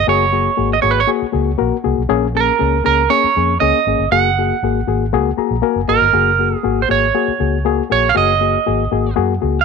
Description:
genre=uptempo 1960s-style soul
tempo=119 BPM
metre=4/4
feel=straight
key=F# major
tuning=A4 = 442 Hz
part: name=clean electric guitar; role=melody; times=0.0-9.6 s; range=A#4 to F#5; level=-15 LUFS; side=right 10 dB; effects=none
part: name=vintage muted fingered electric bass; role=bass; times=0.0-9.6 s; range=F#1 to F#2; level=-20 LUFS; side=equal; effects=none
part: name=reed electric piano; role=accompaniment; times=0.1-9.6 s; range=A#3 to A#5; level=-18 LUFS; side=left 15 dB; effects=overdrive
room=light reverb, digital ambience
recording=1960s-style stereo with parts hard left and right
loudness=-13 LUFS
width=side -5 dB against mid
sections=0.0-6.1 A section; 6.1-9.6 A section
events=reed electric piano fill 5.1-6.1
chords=0.0 F#add9; 2.1 A#m7; 4.1 F#add9

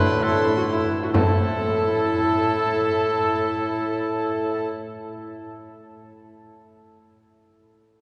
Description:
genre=classical, renaissance-style consort dance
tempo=129 BPM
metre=3/4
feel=straight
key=A minor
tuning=A4 = 439 Hz
part: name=bright alto recorder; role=melody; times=0.0-4.7 s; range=A5 to C6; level=-35 LUFS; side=equal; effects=none
part: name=clear cor anglais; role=second line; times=0.0-4.7 s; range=A4 to B4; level=-28 LUFS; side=equal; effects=none
part: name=lute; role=accompaniment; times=0.0-5.5 s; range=A2 to C5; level=-37 LUFS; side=equal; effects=none
part: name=rich viola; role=accompaniment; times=0.0-4.7 s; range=E4 to F#4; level=-30 LUFS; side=equal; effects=none
part: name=mellow bassoon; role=bass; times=0.0-4.7 s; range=A2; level=-28 LUFS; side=equal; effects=none
part: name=frame drum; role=percussion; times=0.5-1.4 s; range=none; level=-29 LUFS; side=equal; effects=none
room=wet cathedral reverb, RT60 5.3 s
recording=heard from further back in the room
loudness=-22 LUFS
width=mono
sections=0.0-1.1 A section; 1.1-3.9 B section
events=slowing down 0.0-1.1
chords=0.0 Am

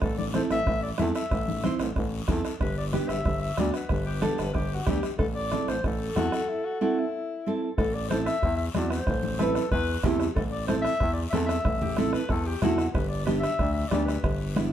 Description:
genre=latin, cumbia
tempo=186 BPM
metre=4/4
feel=straight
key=A dorian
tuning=A4 = 440 Hz
part: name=warm clarinet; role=melody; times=0.0-14.7 s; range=A4 to E5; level=-31 LUFS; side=left 2 dB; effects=none
part: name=growling FM bass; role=bass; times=0.0-14.7 s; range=G1 to E2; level=-30 LUFS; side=left 1 dB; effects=none
part: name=bombo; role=percussion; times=0.0-14.7 s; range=none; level=-31 LUFS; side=right 1 dB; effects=none
part: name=guiro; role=percussion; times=0.0-14.7 s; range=none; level=-43 LUFS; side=left 5 dB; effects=none
part: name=congas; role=percussion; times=0.2-14.7 s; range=none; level=-33 LUFS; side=left 3 dB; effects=none
part: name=nylon-string guitar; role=accompaniment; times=0.3-14.7 s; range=B3 to C5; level=-29 LUFS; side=right 3 dB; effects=none
part: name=breathy tenor saxophone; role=second line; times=4.1-12.8 s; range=E4 to B4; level=-33 LUFS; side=left 5 dB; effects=none
room=moderate studio reverb, RT60 1.0 s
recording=heard from further back in the room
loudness=-24 LUFS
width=side -10 dB against mid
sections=0.0-7.8 A section; 7.8-14.7 B section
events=none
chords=0.0 Am; 2.6 G; 5.2 Am; 12.9 G

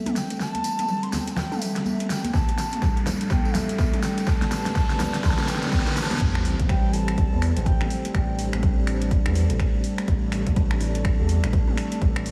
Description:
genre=afro house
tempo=124 BPM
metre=4/4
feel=swing 60% on 16ths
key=A minor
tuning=A4 = 440 Hz
part: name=reedy bansuri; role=melody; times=0.0-8.6 s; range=E5 to C6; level=-35 LUFS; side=equal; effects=low-pass filter, tape echo
part: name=warm analog pad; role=sustained chords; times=0.0-12.3 s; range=A2 to B4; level=-35 LUFS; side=equal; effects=chorus, sidechain pumping
part: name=buzzing kalimba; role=arpeggios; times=0.0-12.3 s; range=E3 to A4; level=-34 LUFS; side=equal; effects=sidechain pumping, tape echo
part: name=riser, reverse cymbal and sub drop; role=sound effects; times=0.6-8.1 s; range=none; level=-38 LUFS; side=equal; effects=none
part: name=deep house drum kit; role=drums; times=0.1-12.3 s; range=crash cymbal, finger snaps, hi-hat, snare drum, toms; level=-33 LUFS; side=equal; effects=overdrive
part: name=congas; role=percussion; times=0.1-6.2 s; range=none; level=-35 LUFS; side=equal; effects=none
part: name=tambourine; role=percussion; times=0.2-6.2 s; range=none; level=-42 LUFS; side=equal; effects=none
part: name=electronic kick drum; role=drums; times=2.3-12.1 s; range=none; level=-26 LUFS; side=equal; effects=overdrive
part: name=smooth gliding synth bass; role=bass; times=6.2-12.3 s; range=A1 to E2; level=-27 LUFS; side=equal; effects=tube saturation, sidechain pumping
room=moderate lush hall reverb, RT60 1.8 s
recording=dreamy mix soaked in reverb, small room ambience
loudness=-23 LUFS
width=mono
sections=0.0-6.2 A section; 6.2-12.3 B section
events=build-up 0.0-6.2; drum fill 0.0-6.2; filter sweep on analog synth pad 0.0-6.2; riser 0.6-6.2; reverse cymbal 5.2-6.2; drop 6.2-12.3; impact 6.2-8.1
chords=0.0 Am7; 2.3 Gsus2/A; 6.2 Am7

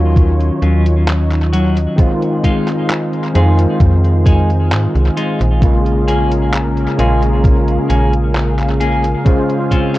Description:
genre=vaporwave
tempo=66 BPM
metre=4/4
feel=straight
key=unclear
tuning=A4 = 440 Hz
part: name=overdriven tine electric piano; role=accompaniment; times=0.0-10.0 s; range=Db3 to C5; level=-17 LUFS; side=equal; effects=ensemble chorus, tape echo
part: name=lush unison pad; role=sustained chords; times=0.0-10.0 s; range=Gb3 to F5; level=-25 LUFS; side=equal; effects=chorus, phaser
part: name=slap-like FM bass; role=bass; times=0.0-9.1 s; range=Bb1 to Ab2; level=-14 LUFS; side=equal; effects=tube saturation
part: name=detuned 8-bit digital drum machine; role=drums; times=0.2-10.0 s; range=handclaps, hi-hat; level=-24 LUFS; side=equal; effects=vintage 12-bit sampler grit, studio ambience, tape echo
part: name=electronic kick drum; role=drums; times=0.2-9.9 s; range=none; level=-12 LUFS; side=equal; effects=vintage 12-bit sampler grit, studio ambience
part: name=clean electric guitar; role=riff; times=0.6-9.9 s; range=Gb3 to Ab4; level=-22 LUFS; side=left 1 dB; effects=wide subtle chorus, vintage 12-bit sampler grit, tape echo
room=light reverb, digital ambience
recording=echo-heavy mix, cassette tape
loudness=-11 LUFS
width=side -16 dB against mid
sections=0.0-10.0 A section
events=none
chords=0.0 Ebm9; 2.0 Fm7; 5.6 Bbm7; 9.3 Dbmaj7

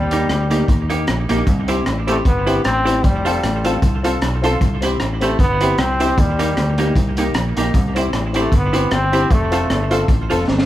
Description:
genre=ska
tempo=153 BPM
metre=4/4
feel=swing 55% on 8ths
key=C major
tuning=A4 = 441 Hz
part: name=brilliant trombone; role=melody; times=0.0-10.1 s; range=G3 to C4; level=-21 LUFS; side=equal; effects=none
part: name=fingered electric bass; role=bass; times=0.0-10.7 s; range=F1 to Eb2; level=-21 LUFS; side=equal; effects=none
part: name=archtop guitar, miked and amplified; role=accompaniment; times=0.1-10.4 s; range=Bb3 to C5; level=-23 LUFS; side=right 3 dB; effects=tape echo
part: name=honky-tonk upright piano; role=stabs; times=0.1-10.4 s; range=Bb3 to A4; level=-24 LUFS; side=left 2 dB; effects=none
part: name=crunchy breakbeat drum kit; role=drums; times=0.1-10.7 s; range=hi-hat, kick drum, rim click, snare drum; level=-20 LUFS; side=equal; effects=none
room=moderate large studio reverb, RT60 0.9 s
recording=band playing live in one room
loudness=-15 LUFS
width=side -13 dB against mid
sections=0.0-10.7 A section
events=drum fill 10.5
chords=0.0 Eb; 1.5 C; 3.0 F; 4.6 C; 6.2 Eb; 7.7 C; 9.3 F

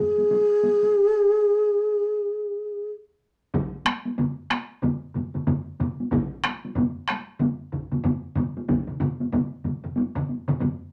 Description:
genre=japanese traditional, taiko drum ensemble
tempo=93 BPM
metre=4/4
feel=swing 60% on 16ths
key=unclear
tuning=A4 = 440 Hz
part: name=breathy mellow long shakuhachi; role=melody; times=0.0-2.9 s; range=G#4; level=-22 LUFS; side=equal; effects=none
part: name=taiko ensemble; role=percussion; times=0.2-10.8 s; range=none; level=-30 LUFS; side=equal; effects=none
part: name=taiko ensemble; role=percussion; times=3.5-10.8 s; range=none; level=-32 LUFS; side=equal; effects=none
part: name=taiko ensemble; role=percussion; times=3.5-10.8 s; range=none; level=-32 LUFS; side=equal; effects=none
part: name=taiko ensemble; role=percussion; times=3.5-8.9 s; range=none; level=-33 LUFS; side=equal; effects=none
room=moderate studio reverb, RT60 0.5 s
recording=none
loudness=-25 LUFS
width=mono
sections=0.0-3.5 A section; 3.5-10.9 B section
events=break 1.0-3.5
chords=none

